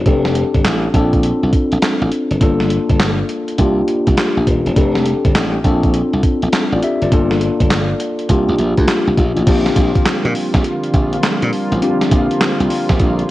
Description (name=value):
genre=R&B, new jack swing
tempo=102 BPM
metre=4/4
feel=swing 65% on 16ths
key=unclear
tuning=A4 = 442 Hz
part: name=mellow tine electric piano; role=accompaniment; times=0.0-13.3 s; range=Bb3 to E5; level=-17 LUFS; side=left 2 dB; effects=phaser, cassette tape
part: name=glassy slap bass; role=bass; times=0.0-13.2 s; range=Eb1 to Bb2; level=-18 LUFS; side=equal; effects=none
part: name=gated 80s digital drum machine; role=drums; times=0.1-13.3 s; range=crash cymbal, handclaps, hi-hat, kick drum, snare drum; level=-16 LUFS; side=right 1 dB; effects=gated reverb, gated reverb snare, cassette tape
part: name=brassy analog pad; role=sustained chords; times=9.5-13.3 s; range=D3 to F4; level=-21 LUFS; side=right 1 dB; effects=chorus, tremolo, cassette tape
room=little or no reverb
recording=home recording on cassette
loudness=-13 LUFS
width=side -16 dB against mid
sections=0.0-9.5 A section; 9.5-13.3 B section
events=none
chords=0.1 F69; 0.9 Bbmaj7; 2.4 Gm7; 3.6 C9sus4; 4.8 F69; 5.6 Bbmaj7; 7.1 Gm7; 8.3 C9sus4